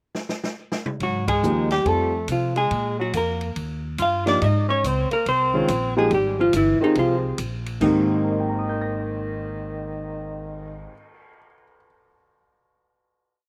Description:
jazz, small-group swing and bop; 141 BPM; 4/4; swing 65% on 8ths; Ab major; A4 = 435 Hz
open jazz drum kit; drums; 0.1-11.1 s; crash cymbal, cymbal swell, hi-hat, kick drum, ride cymbal, snare drum, toms; -36 LUFS; equal
vintage hollow-body jazz guitar; melody; 1.0-10.9 s; Eb4 to F5; -25 LUFS; equal; slapback echo
warm tenor saxophone; second line; 1.0-10.9 s; Eb3 to F4; -31 LUFS; equal; slapback echo
upright bass; bass; 1.0-10.9 s; G1 to C3; -29 LUFS; equal
warm concert grand piano; accompaniment; 1.4-11.9 s; Ab2 to Bb6; -28 LUFS; equal
little or no reverb; recorded outdoors, with no room sound; -23 LUFS; mono
0.0-1.0 pickup bar; 1.0-7.8 A section; 7.8-11.2 final chord
drum fill 0.1-1.0; band accent 1.2
0.0 N.C.; 1.0 Absus2; 1.9 F; 2.7 Bb5; 3.6 Ebadd9; 4.4 Abmaj9

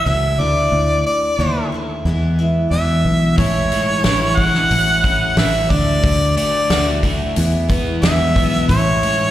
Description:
folk rock and heartland rock; 90 BPM; 4/4; straight; A4 = 439 Hz
clear harmonica; melody; 0.0-9.3 s; C#5 to F#5; -18 LUFS; equal; slapback echo, digital delay
picked twelve-string acoustic guitar; accompaniment; 0.0-9.3 s; E2 to E4; -22 LUFS; left 1 dB
fingered electric bass; bass; 0.0-9.0 s; A1 to E2; -19 LUFS; equal
overdriven semi-hollow guitar; riff; 3.4-9.3 s; E2 to F#4; -24 LUFS; right 1 dB; slapback echo
natural country drum kit; drums; 3.4-9.2 s; hi-hat, kick drum, snare drum; -20 LUFS; equal
light reverb; live gig heard through the venue's PA, recital hall reverb; -14 LUFS; side -13 dB against mid
0.0-9.3 A section
0.4 Dadd9; 2.1 E; 3.4 Amaj7; 4.7 F#m7/A; 5.7 Dadd9; 7.4 E; 8.7 Amaj7

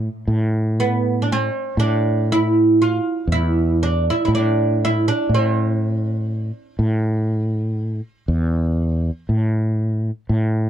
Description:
Arabic maqam ensemble; 120 BPM (eighths); 10/8; straight; A maqam suznak; A4 = 440 Hz
fretless electric bass; bass; 0.0-10.7 s; E2 to A2; -19 LUFS; equal
oud; melody; 0.8-9.3 s; B3 to F4+20c; -19 LUFS; right 3 dB
little or no reverb; dark, warm production; -17 LUFS; side -10 dB against mid
0.3-10.7 A section

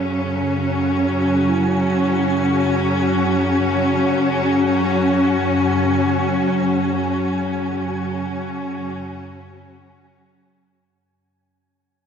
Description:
dark ambient drone; free time; F# minor; A4 = 442 Hz
rich studio cello section; sustained chords; 0.0-10.9 s; C#3 to F#4; -18 LUFS; left 1 dB
dark detuned synth bell; arpeggios; 0.0-10.9 s; E4 to A4; -34 LUFS; right 5 dB
organ-like drone; drone; 0.0-11.0 s; F#2 to F#3; -24 LUFS; equal; ensemble chorus, built-in reverb
flickering grainy texture; texture; 0.0-10.9 s; G#5; -30 LUFS; right 2 dB; built-in reverb
wet cathedral reverb, RT60 6.4 s; -17 LUFS; side -7 dB against mid
0.0-10.9 A section
fade-in on synth drone 0.0-10.9; fade-in on synth texture 0.0-10.9; fade-out 6.0-10.9
0.0 F#5

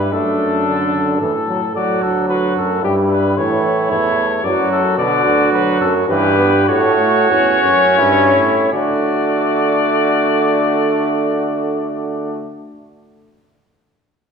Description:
classical, imitative canzona for brass ensemble; 76-113 BPM; 3/4; straight; D major; A4 = 440 Hz
warm trumpet; melody; 0.0-12.5 s; G4 to D5; -19 LUFS; left 7 dB
warm flugelhorn; second line; 0.0-12.5 s; D4 to A4; -20 LUFS; right 6 dB
bright trombone; accompaniment; 0.0-12.5 s; D3 to C#4; -19 LUFS; equal
bright bass trombone; bass; 0.0-12.5 s; D2 to D3; -19 LUFS; right 2 dB
wet recital hall reverb, RT60 1.9 s; recorded in a church or concert hall; -13 LUFS; side -6 dB against mid
0.0-1.8 A section; 1.8-8.7 B section; 8.7-13.4 C section
slowing down 4.2-8.7
0.1 D/F#; 1.2 A5; 1.8 D; 2.8 Em/G; 3.4 A; 4.4 D/F#; 5.0 Bm; 6.1 Em/G; 6.7 A; 8.7 D

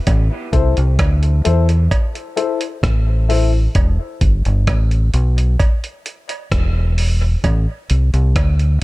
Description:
dub reggae; 65 BPM; 4/4; straight; A4 = 440 Hz
deep dub fingered electric bass; bass; 0.1-8.8 s; E1 to E2; -14 LUFS; equal
dusty soul sampler-style drum kit; drums; 0.1-8.8 s; hi-hat, kick drum, rim click; -18 LUFS; equal
cowbell; percussion; 0.1-8.6 s; -30 LUFS; right 5 dB; dub echo
dark concert grand piano; stabs; 0.5-3.5 s; E4 to C5; -23 LUFS; left 7 dB; dub echo
digital ambience; -14 LUFS; side -20 dB against mid
0.0-8.8 A section
0.1 Am; 3.8 Em; 7.4 Am

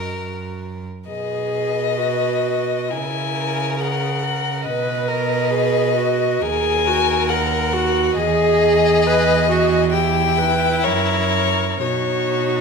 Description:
classical, slow romantic movement for string quartet; 67 BPM; 4/4; uneven beats, rubato; B major; A4 = 440 Hz
rich violin; melody; 0.0-12.6 s; C#5 to G#5; -21 LUFS; left 8 dB
warm violin; second line; 0.0-12.6 s; D#4 to B4; -26 LUFS; equal
warm viola; accompaniment; 0.0-12.6 s; E4 to B4; -21 LUFS; right 3 dB
warm cello; bass; 0.0-12.6 s; D#2 to C#3; -24 LUFS; right 6 dB
wet recital hall reverb, RT60 1.4 s; minimal, uncompressed stereo recording; -16 LUFS; side -5 dB against mid
0.0-12.6 A section
0.0 F#; 1.1 B; 2.9 F#7/C#; 4.7 B; 6.4 D#m; 8.2 Emaj7; 9.9 Em; 10.9 F#7; 11.8 B

